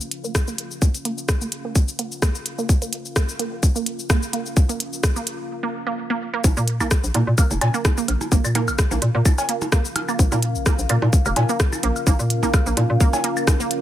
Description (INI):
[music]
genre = minimal techno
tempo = 128 BPM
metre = 4/4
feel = swing 54% on 16ths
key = Bb minor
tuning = A4 = 441 Hz
[part]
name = minimal click drum kit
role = drums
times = 0.0-13.8 s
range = cabasa, hi-hat, rim click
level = -26 LUFS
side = left 1 dB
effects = overdrive
[part]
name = deep dark ambient pad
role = texture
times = 0.0-13.8 s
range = Db4 to F5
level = -31 LUFS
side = left 2 dB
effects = chorus, built-in reverb, sidechain pumping
[part]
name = resonant blip pluck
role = riff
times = 0.2-13.6 s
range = Bb3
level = -27 LUFS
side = right 5 dB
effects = chorus, phaser, sidechain pumping, tape echo
[part]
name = electronic kick drum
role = drums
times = 0.3-13.6 s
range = none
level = -17 LUFS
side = equal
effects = overdrive
[part]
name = hollow knocking FM bass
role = bass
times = 6.4-13.0 s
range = F1 to Bb2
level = -21 LUFS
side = equal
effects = sidechain pumping
[part]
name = percussion blips, woodblock and cowbell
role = percussion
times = 6.4-13.6 s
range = none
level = -27 LUFS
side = right 1 dB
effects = none
[sound]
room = little or no reverb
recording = none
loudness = -18 LUFS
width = side -12 dB against mid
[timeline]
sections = 0.0-6.4 A section; 6.4-13.8 B section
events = build-up 0.0-6.4; filter sweep on synth pluck 0.0-6.4; break 5.5-6.4; drop 6.4-13.8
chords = 0.0 Bbm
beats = 0.35 | 0.82 1.29 1.75 2.22 | 2.69 3.16 3.63 4.10 | 4.57 5.04 5.50 5.97 | 6.44 6.91 7.38 7.85 | 8.32 8.79 9.26 9.72 | 10.19 10.66 11.13 11.60 | 12.07 12.54 13.01 13.47